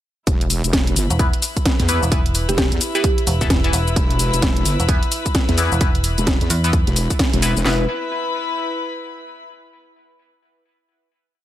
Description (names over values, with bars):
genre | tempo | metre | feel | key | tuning
bass house | 130 BPM | 4/4 | swing 61% on 16ths | E minor | A4 = 442 Hz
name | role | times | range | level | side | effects
wobble bass | bass | 0.3-7.9 s | E1 to E2 | -20 LUFS | equal | chorus, sidechain pumping
house drum kit | drums | 0.3-7.8 s | handclaps, kick drum, snare drum | -19 LUFS | equal | overdrive
house drum kit | drums | 0.3-7.6 s | hi-hat, shaker, snare drum | -22 LUFS | equal | overdrive
dark studio string section | texture | 0.3-9.5 s | E4 to B5 | -26 LUFS | left 2 dB | sidechain pumping
metallic FM bass | bass | 1.1-6.9 s | E1 to E2 | -20 LUFS | equal | overdrive, sidechain pumping
band-passed chord stab | stabs | 1.2-7.8 s | E3 to B4 | -26 LUFS | left 2 dB | phaser, cassette tape, sidechain pumping, tape echo
mallet-like synth pluck | melody | 2.5-3.6 s | G4 | -26 LUFS | right 4 dB | chorus, tape echo
room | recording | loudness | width
light reverb, digital ambience | none | -16 LUFS | side -12 dB against mid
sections
0.3-7.7 drop; 7.7-9.5 final chord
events
drop 0.3-7.7; band accent 7.2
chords
0.3 E5